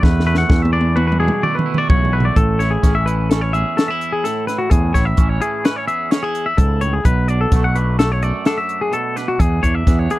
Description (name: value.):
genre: math rock and midwest emo.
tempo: 128 BPM.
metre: 5/4.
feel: straight.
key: A major.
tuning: A4 = 440 Hz.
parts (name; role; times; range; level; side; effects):
twangy electric guitar; accompaniment; 0.0-10.2 s; E2 to A4; -25 LUFS; right 9 dB; spring reverb.
twangy electric guitar; arpeggios; 0.0-10.2 s; F#4 to F#5; -20 LUFS; left 3 dB; none.
growling fingered electric bass; bass; 0.0-10.1 s; A1 to E2; -17 LUFS; equal; overdrive.
compact cocktail drum kit; drums; 0.0-10.2 s; hi-hat, kick drum, snare drum, toms; -17 LUFS; equal; none.
room: little or no reverb.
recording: dry, close 1970s-style studio recording.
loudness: -14 LUFS.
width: side -17 dB against mid.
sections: 0.0-2.4 A section; 2.4-10.2 B section.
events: drum fill 0.0-2.4.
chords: 0.0 E9sus4; 2.4 Amaj7; 7.0 Bm7; 9.4 E7.